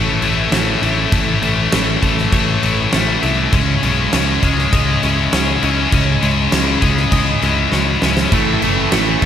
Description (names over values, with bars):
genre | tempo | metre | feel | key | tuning
post-rock | 100 BPM | 4/4 | straight | A lydian | A4 = 439 Hz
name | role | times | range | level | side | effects
bright symphonic string section | sustained chords | 0.0-9.3 s | E4 to C#6 | -29 LUFS | right 2 dB | none
twelve-string electric guitar | arpeggios | 0.0-9.3 s | C#3 to D#5 | -24 LUFS | right 1 dB | spring reverb, slapback echo
cranked stack guitar | riff | 0.0-9.3 s | A2 to C#4 | -17 LUFS | left 5 dB | overdrive
modern bright picked electric bass | bass | 0.0-9.3 s | F#1 to C#2 | -20 LUFS | right 1 dB | none
huge arena drum kit | drums | 0.2-9.3 s | crash cymbal, kick drum, snare drum | -18 LUFS | equal | none
crunchy overdriven guitar | riff | 8.3-9.3 s | A2 to A3 | -20 LUFS | right 12 dB | slapback echo
room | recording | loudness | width
moderate lush hall reverb, RT60 2.7 s | big arena sound, faint mains hum | -13 LUFS | side -9 dB against mid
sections
0.0-9.3 A section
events
drum fill 7.7-8.3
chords
0.0 A; 3.5 C#madd9; 8.3 A